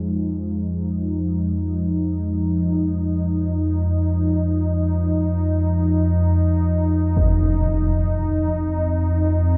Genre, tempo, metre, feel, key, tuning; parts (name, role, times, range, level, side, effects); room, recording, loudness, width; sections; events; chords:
dark ambient drone; free time; A4 = 438 Hz
sweeping resonant pad; sustained chords; 0.0-9.6 s; F2 to Eb4; -25 LUFS; equal; chorus
deep rumbling drone; drone; 0.0-9.6 s; F2 to F3; -23 LUFS; equal; built-in reverb, phaser
impact; percussion; 7.2-7.4 s; -26 LUFS; equal; low-pass filter on sfx
wet cathedral reverb, RT60 5.2 s; in a vast, echoing space, cassette tape; -21 LUFS; mono
0.0-9.6 A section
filter sweep on synth drone 0.0-9.6
0.0 Fm; 7.2 Ebsus2/F